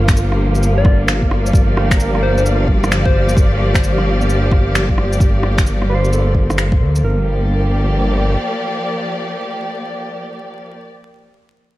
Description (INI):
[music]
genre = future garage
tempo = 131 BPM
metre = 4/4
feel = swing 64% on 16ths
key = G minor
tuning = A4 = 437 Hz
[part]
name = mellow electric guitar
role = accompaniment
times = 0.0-10.7 s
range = F4 to C5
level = -27 LUFS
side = right 2 dB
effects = sidechain pumping, low-pass filter, ping-pong delay
[part]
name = warm studio string section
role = sustained chords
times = 0.0-10.9 s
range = F3 to D5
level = -21 LUFS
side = left 1 dB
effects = sidechain pumping
[part]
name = swelling detuned saw bass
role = bass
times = 0.0-8.4 s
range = G1 to D2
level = -16 LUFS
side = equal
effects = sidechain pumping
[part]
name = flickering grainy texture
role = texture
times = 0.0-7.0 s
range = F5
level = -30 LUFS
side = right 4 dB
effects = built-in reverb
[part]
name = electronic finger snaps, shaker and rim click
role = drums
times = 0.1-7.0 s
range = none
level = -21 LUFS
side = equal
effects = none
[part]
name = electronic kick drum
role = drums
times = 0.1-6.8 s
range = none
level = -14 LUFS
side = equal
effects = none
[part]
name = soft struck synth lead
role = melody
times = 0.8-3.4 s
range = C5 to D5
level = -24 LUFS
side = left 2 dB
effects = chorus, ping-pong delay
[sound]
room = light reverb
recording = vinyl crackle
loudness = -13 LUFS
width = side -16 dB against mid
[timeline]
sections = 0.0-7.0 A section; 7.0-10.7 B section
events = filter sweep on detuned saw bass 0.0-7.0; filter sweep on clean electric guitar 0.0-7.0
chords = 0.0 Gm7